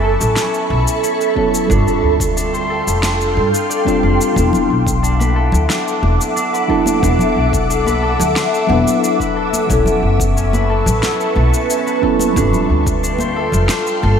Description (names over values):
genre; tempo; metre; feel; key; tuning
sunset chillout; 90 BPM; 4/4; straight; unclear; A4 = 439 Hz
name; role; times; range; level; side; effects
mellow FM electric piano; accompaniment; 0.0-14.2 s; F#3 to B4; -19 LUFS; moving between left 6 dB and right 7 dB; chorus, phaser, auto-pan, analog delay
ethereal airy pad; sustained chords; 0.0-14.2 s; A4 to D6; -19 LUFS; right 1 dB; ensemble chorus, built-in reverb, phaser
concert harp; arpeggios; 0.0-14.2 s; C#4 to D5; -22 LUFS; left 2 dB; low-pass filter, analog delay
upright bass; bass; 0.0-14.2 s; E1 to G2; -17 LUFS; equal; none
electronic cabasa and snare drum; drums; 0.2-14.0 s; none; -24 LUFS; left 1 dB; studio ambience
electronic kick drum; drums; 1.4-13.0 s; none; -22 LUFS; equal; studio ambience
congas; percussion; 4.5-14.2 s; none; -25 LUFS; left 1 dB; none
room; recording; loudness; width
moderate plate reverb, RT60 2.8 s; dreamy mix soaked in reverb; -13 LUFS; side -7 dB against mid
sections
0.0-14.2 A section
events
none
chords
0.0 B9sus4; 1.7 G9sus4; 4.4 E9sus4; 9.7 B9sus4; 12.4 G9sus4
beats
0.36 1.03 | 1.70 2.36 3.03 3.70 | 4.36 5.03 5.70 6.36 | 7.03 7.70 8.36 9.03 | 9.70 10.36 11.03 11.70 | 12.36 13.03 13.70